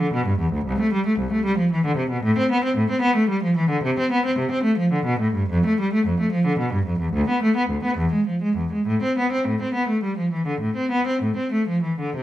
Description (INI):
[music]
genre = classical, baroque-style suite movement for unaccompanied cello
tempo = 58-77 BPM (dotted quarters)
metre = 12/8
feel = rubato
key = A minor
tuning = A4 = 440 Hz
[part]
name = rich cello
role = solo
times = 0.0-12.2 s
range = C2 to C4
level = -19 LUFS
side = equal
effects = none
[sound]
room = moderate large studio reverb, RT60 0.9 s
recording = minimal, uncompressed stereo recording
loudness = -19 LUFS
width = side -13 dB against mid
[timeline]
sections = 0.0-12.2 A section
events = none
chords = none